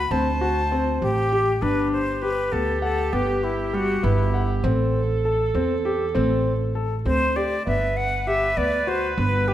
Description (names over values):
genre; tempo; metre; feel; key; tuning
contemporary instrumental, chamber music in an uneven meter; 199 BPM (eighths); 5/8; straight; unclear; A4 = 440 Hz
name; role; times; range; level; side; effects
breathy silver concert flute; melody; 0.0-4.5, 7.1-9.5 s; E4 to B5; -24 LUFS; left 1 dB; none
rich viola; second line; 0.0-9.5 s; G4 to C5; -29 LUFS; right 3 dB; none
upright bass; bass; 0.0-9.5 s; G1 to E2; -25 LUFS; right 1 dB; none
clear grand piano; arpeggios; 0.1-9.5 s; G3 to F#5; -26 LUFS; left 3 dB; none
room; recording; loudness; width
moderate recital hall reverb, RT60 1.4 s; none; -20 LUFS; side -12 dB against mid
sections
0.0-1.6 A section; 1.6-9.5 B section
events
none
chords
0.1 D7(no3); 1.6 G; 4.6 Am; 7.7 G